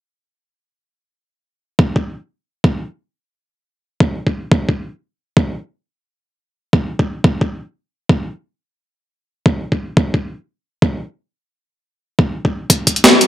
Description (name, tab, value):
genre	liquid drum and bass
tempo	176 BPM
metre	4/4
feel	swing 53% on 16ths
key	none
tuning	none
part	electronic kick drum	drums	1.8-12.9 s	none	-15 LUFS	equal	high-pass filter on kick, high-pass filter on room
part	breakbeat sampler-style drum kit	drums	12.7-13.3 s	hi-hat, snare drum	-8 LUFS	equal	none
room	little or no reverb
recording	dark, warm production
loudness	-16 LUFS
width	side -13 dB against mid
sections	1.8-13.3 A section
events	none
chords	none